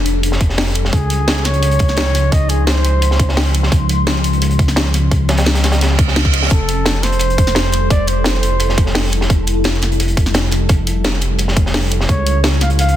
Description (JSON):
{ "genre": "liquid drum and bass", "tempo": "172 BPM", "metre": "4/4", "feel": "straight", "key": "unclear", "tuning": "A4 = 440 Hz", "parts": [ { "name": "glassy FM pad", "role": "sustained chords", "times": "0.0-13.0 s", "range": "F3 to C6", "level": "-23 LUFS", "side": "left 2 dB", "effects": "ensemble chorus, built-in reverb, phaser" }, { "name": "dark detuned saw bass", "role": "bass", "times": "0.0-13.0 s", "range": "F1 to Db2", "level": "-16 LUFS", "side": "equal", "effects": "none" }, { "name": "crunchy breakbeat drum kit", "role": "drums", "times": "0.1-13.0 s", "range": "hi-hat, snare drum", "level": "-23 LUFS", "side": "equal", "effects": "high-pass filter on hats, small room ambience, high-pass filter on snare, high-pass filter on room" }, { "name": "garage drum kit", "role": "drums", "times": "0.1-12.9 s", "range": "hi-hat, snare drum", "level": "-20 LUFS", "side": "equal", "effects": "small room ambience" }, { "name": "electronic kick drum", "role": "drums", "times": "0.4-12.2 s", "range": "none", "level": "-14 LUFS", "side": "equal", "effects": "small room ambience" }, { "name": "mellow flugelhorn", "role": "melody", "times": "0.9-3.3, 6.5-8.9, 12.1-13.0 s", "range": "Ab4 to F5", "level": "-21 LUFS", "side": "right 1 dB", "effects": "digital delay" }, { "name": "reverse cymbal", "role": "sound effects", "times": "5.9-6.5 s", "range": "none", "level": "-22 LUFS", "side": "right 6 dB", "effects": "none" } ], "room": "light reverb, small room ambience", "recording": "dense, heavily limited modern master", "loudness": "-12 LUFS", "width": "side -12 dB against mid", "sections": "0.0-13.0 A section", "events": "reverse cymbal 5.9-6.5", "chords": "0.0 Fadd9; 0.9 Dbmaj9; 6.5 Fmaj9; 12.1 Dbmaj9", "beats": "0.23 0.58 | 0.93 1.28 1.63 1.98 | 2.33 2.67 3.02 3.37 | 3.72 4.07 4.42 4.77 | 5.12 5.46 5.81 6.16 | 6.51 6.86 7.21 7.56 | 7.91 8.26 8.60 8.95 | 9.30 9.65 10.00 10.35 | 10.70 11.05 11.39 11.74 | 12.09 12.44 12.79" }